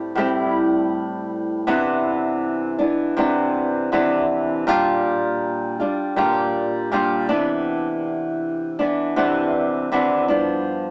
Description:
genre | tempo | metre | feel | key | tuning
indie pop | 80 BPM | 4/4 | straight | C major | A4 = 440 Hz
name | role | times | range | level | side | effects
flamenco guitar | solo | 0.0-10.9 s | G2 to F4 | -21 LUFS | equal | lush chorus, warbly pitch drift, cassette tape
room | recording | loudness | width
wet booth ambience, RT60 0.3 s | home recording on cassette, small speaker sound | -21 LUFS | mono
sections
0.0-1.7 A section; 1.7-10.9 B section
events
none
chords
0.0 Am7; 1.7 Cmaj9; 4.7 Bb6; 7.3 Cmaj9; 10.3 G7

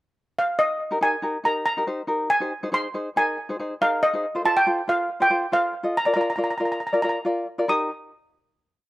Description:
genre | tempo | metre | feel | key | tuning
calypso | 139 BPM | 4/4 | straight | Eb major | A4 = 438 Hz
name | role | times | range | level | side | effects
steel pan | melody | 0.4-7.9 s | Eb5 to Eb6 | -22 LUFS | right 1 dB | slapback echo
tenor ukulele | accompaniment | 0.9-7.9 s | Eb4 to Eb5 | -25 LUFS | left 1 dB | none
room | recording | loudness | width
little or no reverb | recorded outdoors, with no room sound | -21 LUFS | side -17 dB against mid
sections
0.0-0.8 pickup bar; 0.8-7.7 verse; 7.7-8.9 final chord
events
none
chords
0.0 N.C.; 0.8 Eb; 2.5 Ab/Eb; 4.2 F; 6.0 Bb; 7.7 Eb

